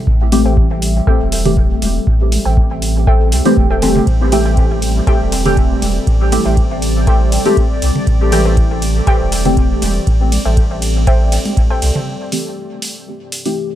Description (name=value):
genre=dub techno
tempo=120 BPM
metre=4/4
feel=swing 53% on 16ths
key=A minor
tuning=A4 = 440 Hz
part: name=deep dark ambient pad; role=sustained chords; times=0.0-13.8 s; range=G3 to E5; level=-23 LUFS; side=equal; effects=chorus, built-in reverb, sidechain pumping
part: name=soft dub sub bass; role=bass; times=0.1-11.9 s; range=E1 to C2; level=-16 LUFS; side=equal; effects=sidechain pumping
part: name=electronic kick drum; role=drums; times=0.1-11.7 s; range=none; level=-14 LUFS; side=equal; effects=none
part: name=deep mellow chord stab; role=stabs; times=0.3-13.8 s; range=E3 to G4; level=-18 LUFS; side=equal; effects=chorus, phaser, sidechain pumping, dub echo
part: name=booming analog drum machine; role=drums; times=0.3-13.5 s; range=hi-hat, ride cymbal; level=-24 LUFS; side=right 2 dB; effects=none
part: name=electronic toms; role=percussion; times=0.3-12.0 s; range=none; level=-24 LUFS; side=right 2 dB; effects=sidechain pumping on toms, dub echo
part: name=warbly dusty pluck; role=riff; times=0.5-11.9 s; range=A4 to G5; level=-24 LUFS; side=left 1 dB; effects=chorus, phaser, sidechain pumping, dub echo
room=digital ambience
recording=echo-heavy mix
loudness=-11 LUFS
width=side -12 dB against mid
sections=0.0-12.1 A section; 12.1-13.8 B section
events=none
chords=0.0 Am7